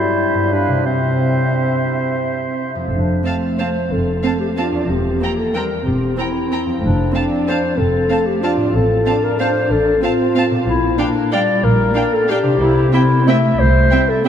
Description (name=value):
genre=classical, orchestral ballroom waltz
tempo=165-203 BPM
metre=3/4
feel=rubato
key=F major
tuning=A4 = 440 Hz
part: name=clear oboe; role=second line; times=0.0-2.7 s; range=B4 to C5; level=-27 LUFS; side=right 3 dB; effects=none
part: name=mellow clarinet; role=second line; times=0.0-14.3 s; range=C4 to E5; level=-18 LUFS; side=left 2 dB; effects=none
part: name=silver concert flute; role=second line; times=0.0-2.7 s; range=E5 to F5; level=-29 LUFS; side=left 3 dB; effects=none
part: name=dark bassoon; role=accompaniment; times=0.0-2.8 s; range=C3 to G3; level=-25 LUFS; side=right 5 dB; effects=none
part: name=concert harp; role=arpeggios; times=0.0-14.3 s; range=E2 to Bb4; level=-22 LUFS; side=left 1 dB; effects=none
part: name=dark chamber cello section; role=bass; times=2.9-14.3 s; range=F3 to E4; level=-22 LUFS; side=right 1 dB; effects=none
part: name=dark chamber double bass section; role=bass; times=2.9-13.8 s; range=E1 to C2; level=-20 LUFS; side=right 1 dB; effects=none
part: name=warm chamber viola section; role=accompaniment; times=3.2-14.3 s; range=C4 to D4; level=-25 LUFS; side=right 6 dB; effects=none
part: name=warm chamber violin section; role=melody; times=3.3-14.3 s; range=G5 to Bb5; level=-29 LUFS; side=right 2 dB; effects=none
part: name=warm chamber violin section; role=second line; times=3.3-14.3 s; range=E5 to G5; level=-29 LUFS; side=right 1 dB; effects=none
room=wet cathedral reverb, RT60 6.2 s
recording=in a vast, echoing space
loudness=-14 LUFS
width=side -9 dB against mid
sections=0.0-2.9 A section; 2.9-14.3 B section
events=none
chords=0.0 C/G; 0.9 C; 2.9 F; 4.9 C7/E; 6.8 F; 8.7 F/A; 10.7 Gm7/Bb; 12.6 C